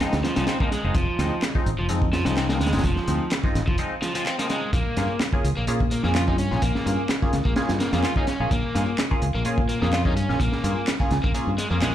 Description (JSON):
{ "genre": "breakbeat, breaks", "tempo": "127 BPM", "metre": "4/4", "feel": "swing 54% on 16ths", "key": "Bb dorian", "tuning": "A4 = 440 Hz", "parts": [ { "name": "band-passed chord stab", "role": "stabs", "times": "0.0-11.9 s", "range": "F3 to Ab4", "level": "-28 LUFS", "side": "left 1 dB", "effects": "phaser, cassette tape, digital delay" }, { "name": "crunchy breakbeat drum kit", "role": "drums", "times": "0.0-11.9 s", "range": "hi-hat, kick drum, snare drum", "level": "-25 LUFS", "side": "equal", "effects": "none" }, { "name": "fingered electric bass", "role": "bass", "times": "0.1-11.9 s", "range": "F1 to Bb2", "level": "-25 LUFS", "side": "equal", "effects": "none" }, { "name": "overdriven electric guitar", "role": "riff", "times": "0.2-11.9 s", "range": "F3 to F4", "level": "-29 LUFS", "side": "equal", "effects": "low-pass filter, digital delay" }, { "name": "electronic handclaps", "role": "drums", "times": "0.5-11.9 s", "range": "none", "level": "-30 LUFS", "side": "equal", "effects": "none" } ], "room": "light reverb", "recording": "played on a big sound system in a bare room, large studio reverb", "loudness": "-21 LUFS", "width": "side -11 dB against mid", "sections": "0.0-11.9 A section", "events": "break 3.8-4.7", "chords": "0.0 Fm7; 4.7 Bbm7", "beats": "0.01 0.48 | 0.95 1.43 1.90 2.37 | 2.84 3.31 3.79 4.26 | 4.73 5.20 5.68 6.15 | 6.62 7.09 7.57 8.04 | 8.51 8.98 9.46 9.93 | 10.40 10.87 11.35 11.82" }